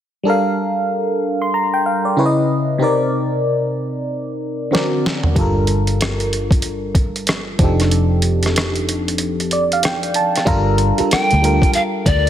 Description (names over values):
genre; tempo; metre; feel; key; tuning
R&B, neo-soul; 94 BPM; 4/4; swing 62% on 16ths; G minor; A4 = 439 Hz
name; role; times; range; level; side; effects
FM electric piano; accompaniment; 0.2-12.3 s; C3 to C6; -18 LUFS; equal; chorus, phaser
boom bap sampler-style drum kit; drums; 4.7-12.3 s; hi-hat, kick drum, rim click, snare drum, toms; -18 LUFS; equal; overdrive
vintage muted fingered electric bass; bass; 5.4-12.3 s; F1 to D2; -19 LUFS; equal; none
breathy pan flute; melody; 11.1-12.3 s; D5 to G5; -17 LUFS; left 1 dB; none
room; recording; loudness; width
light reverb; dense, heavily limited modern master; -15 LUFS; side -10 dB against mid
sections
0.3-10.5 A section; 10.5-12.3 B section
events
drum fill 4.7-5.4; kick muted 7.9-10.5; FM electric piano fill 9.2-10.5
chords
0.3 Gm7; 2.2 C#m9; 2.8 Cm9; 4.7 D7b13; 5.4 Gm7; 7.6 F13; 10.5 Gm7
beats
| 0.25 0.89 1.53 2.17 | 2.81 3.44 4.08 4.72 | 5.36 6.00 6.64 7.28 | 7.91 8.55 9.19 9.83 | 10.47 11.11 11.74